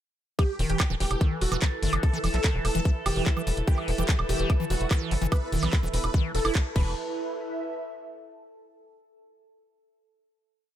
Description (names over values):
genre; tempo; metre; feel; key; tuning
psychedelic trance; 146 BPM; 4/4; straight; E harmonic minor; A4 = 440 Hz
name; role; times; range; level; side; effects
dense compressed supersaw; melody; 0.4-6.9 s; F#4 to B4; -34 LUFS; right 1 dB; phaser, vintage 12-bit sampler grit, sidechain pumping, tape echo
overtone-sweeping drone; sustained chords; 0.7-6.8 s; A4; -38 LUFS; right 3 dB; chorus, built-in reverb, sidechain pumping
liquid acid bass; riff; 0.4-6.9 s; D#3 to E4; -32 LUFS; moving between left 4 dB and right 5 dB; phaser, auto-pan, sidechain pumping
drum and bass drum kit; drums; 0.4-6.8 s; crash cymbal, handclaps, hi-hat, woodblock; -32 LUFS; right 2 dB; none
electronic kick drum; drums; 0.4-6.8 s; none; -23 LUFS; equal; none
airy breathy pad; texture; 0.4-8.6 s; E4 to E5; -36 LUFS; right 1 dB; chorus, sidechain pumping
tight sequencer bass; bass; 0.6-6.9 s; E1 to B1; -28 LUFS; equal; none
room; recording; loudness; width
little or no reverb; none; -24 LUFS; side -11 dB against mid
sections
0.4-7.0 drop; 7.0-8.6 final note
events
drop 0.4-7.0; band accent 6.6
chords
0.4 E5